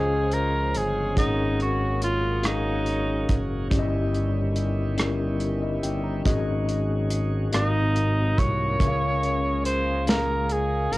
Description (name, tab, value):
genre	slow gospel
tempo	47 BPM (dotted quarters)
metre	6/8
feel	straight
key	Db major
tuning	A4 = 440 Hz
part	bright alto saxophone	melody	0.0-3.4, 7.5-11.0 s	Eb4 to Db5	-26 LUFS	right 1 dB	cassette tape
part	mellow tine electric piano	accompaniment	0.0-11.0 s	G2 to Bb5	-27 LUFS	left 2 dB	medium stereo tremolo, cassette tape
part	bright tonewheel organ	sustained chords	0.0-11.0 s	C3 to C5	-38 LUFS	right 5 dB	slow rotary speaker, overdrive, cassette tape
part	mellow French horn section	sustained chords	0.0-11.0 s	C3 to F5	-35 LUFS	equal	none
part	smooth synth bass	bass	0.0-11.0 s	Gb1 to Db2	-28 LUFS	right 1 dB	none
part	modern studio drum kit	drums	0.3-11.0 s	hi-hat, kick drum, rim click, snare drum	-26 LUFS	right 1 dB	cassette tape
room	light reverb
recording	home recording on cassette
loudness	-22 LUFS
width	side -19 dB against mid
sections	0.0-11.0 A section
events	none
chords	0.0 Dbmaj7; 1.2 Ab9sus4; 3.7 Eb7b9/G; 6.3 Ab7sus4; 7.5 Ab13; 8.8 Db6